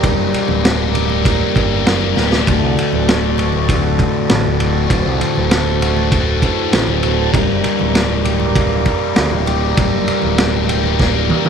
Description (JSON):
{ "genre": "psychedelic rock", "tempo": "99 BPM", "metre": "4/4", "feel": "straight", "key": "unclear", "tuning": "A4 = 440 Hz", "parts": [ { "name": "mellow tonewheel organ", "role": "sustained chords", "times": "0.0-11.5 s", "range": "F#4 to Bb5", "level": "-20 LUFS", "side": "right 11 dB", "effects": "slow rotary speaker" }, { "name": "thick fuzz guitar", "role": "riff", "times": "0.0-11.5 s", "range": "D2 to G4", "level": "-18 LUFS", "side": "left 14 dB", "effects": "distortion, phaser" }, { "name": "growling picked electric bass", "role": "bass", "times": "0.0-11.3 s", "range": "D1 to D2", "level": "-19 LUFS", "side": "equal", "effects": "overdrive" }, { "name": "vintage drum kit", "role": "drums", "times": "0.0-11.5 s", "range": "kick drum, ride cymbal, snare drum, toms", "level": "-18 LUFS", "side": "right 1 dB", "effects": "none" }, { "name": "congas", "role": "percussion", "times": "0.3-11.5 s", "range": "none", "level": "-28 LUFS", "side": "right 12 dB", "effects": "none" } ], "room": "light reverb", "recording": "1960s-style stereo with parts hard left and right", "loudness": "-13 LUFS", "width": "side -7 dB against mid", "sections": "0.0-11.5 A section", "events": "drum fill 1.9-2.5, 11.0-11.5", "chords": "0.0 Gm/D; 2.5 D; 7.3 Gm/D" }